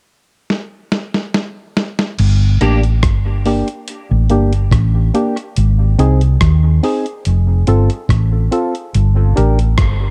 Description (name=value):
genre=dub reggae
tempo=71 BPM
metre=4/4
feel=straight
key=G minor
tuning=A4 = 441 Hz
part: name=dusty soul sampler-style drum kit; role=drums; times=0.5-10.0 s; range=crash cymbal, hi-hat, kick drum, rim click, snare drum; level=-20 LUFS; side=equal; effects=none
part: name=hollow-body short-scale fingered electric bass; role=bass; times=2.2-10.1 s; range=F1 to Eb2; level=-14 LUFS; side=equal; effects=none
part: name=electric guitar at the edge of break-up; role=accompaniment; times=2.6-2.8 s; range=Bb3 to G4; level=-28 LUFS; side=equal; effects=analog chorus, dub echo
part: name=percussive organ stab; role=stabs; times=2.6-9.6 s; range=Bb3 to Bb4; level=-22 LUFS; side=equal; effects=chorus, dub echo
room=digital ambience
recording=dark, warm production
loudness=-15 LUFS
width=mono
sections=0.0-2.2 A section; 2.2-10.1 B section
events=drum fill 0.5-2.2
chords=0.0 N.C.; 2.2 Gm; 5.6 Ab; 7.3 F; 8.9 Gm